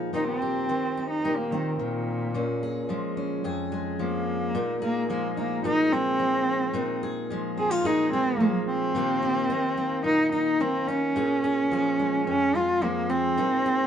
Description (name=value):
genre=acoustic folk duo or small band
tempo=109 BPM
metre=4/4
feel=straight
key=Bb dorian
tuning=A4 = 444 Hz
part: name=fingerpicked steel-string acoustic guitar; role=accompaniment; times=0.0-13.9 s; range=F2 to Ab4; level=-28 LUFS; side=equal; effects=none
part: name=warm cello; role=melody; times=0.1-13.9 s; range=Bb2 to Ab4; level=-25 LUFS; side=equal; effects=none
room=moderate studio reverb, RT60 0.6 s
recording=dark, warm production, nothing above 10.5 kHz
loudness=-23 LUFS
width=side -8 dB against mid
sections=0.1-9.0 A section; 9.0-13.9 B section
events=cello solo 0.1-9.0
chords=0.1 Cm7/Bb; 2.3 Bbm7; 4.5 Fm7/Bb; 9.0 Cm7/Bb; 11.2 Bbm7